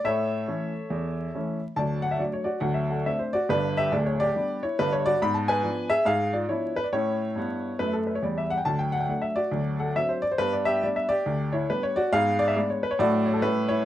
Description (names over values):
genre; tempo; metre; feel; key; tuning
jazz, stride piano; 139 BPM; 4/4; swing 62% on 8ths; D major; A4 = 440 Hz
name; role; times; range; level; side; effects
clear upright piano; solo; 0.0-13.8 s; D1 to B5; -23 LUFS; equal; none
room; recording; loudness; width
moderate club reverb, RT60 0.6 s; vinyl crackle; -23 LUFS; side -12 dB against mid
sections
0.0-1.8 A section; 1.8-13.8 B section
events
none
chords
0.0 A; 1.8 D; 2.6 D7; 3.5 G; 5.2 G#dim7; 6.9 A; 8.7 D; 9.5 D7; 10.4 G; 12.1 G#dim; 13.0 D/A; 13.4 A9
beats
| 0.04 0.47 0.90 1.33 | 1.76 2.19 2.62 3.05 | 3.48 3.92 4.35 4.78 | 5.21 5.64 6.07 6.50 | 6.93 7.37 7.80 8.23 | 8.66 9.09 9.53 9.96 | 10.39 10.82 11.26 11.69 | 12.12 12.55 12.99 13.42